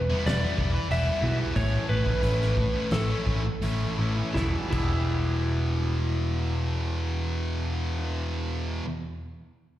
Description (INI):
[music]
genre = quiet-loud alternative rock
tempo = 80-95 BPM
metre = 4/4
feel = straight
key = E dorian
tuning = A4 = 440 Hz
[part]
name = lightly driven lead guitar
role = melody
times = 0.0-8.1 s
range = E4 to E5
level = -32 LUFS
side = equal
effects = slapback echo
[part]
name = twangy electric guitar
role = arpeggios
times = 0.0-8.8 s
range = E2 to E4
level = -38 LUFS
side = right 2 dB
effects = phaser, slapback echo
[part]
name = picked electric bass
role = bass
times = 0.0-8.8 s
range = E1 to B1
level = -27 LUFS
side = equal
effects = none
[part]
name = thick fuzz guitar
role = riff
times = 0.1-8.8 s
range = E2 to E4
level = -31 LUFS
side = equal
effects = distortion, slapback echo
[part]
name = loose indie drum kit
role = drums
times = 0.3-4.9 s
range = crash cymbal, hi-hat, kick drum, snare drum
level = -31 LUFS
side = equal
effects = none
[sound]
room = studio reverb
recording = live gig heard through the venue's PA, recital hall reverb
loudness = -24 LUFS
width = side -13 dB against mid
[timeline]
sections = 0.0-4.3 A section; 4.3-7.3 B section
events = slowing down 0.0-4.3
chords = 0.0 Em; 1.5 A; 4.3 Em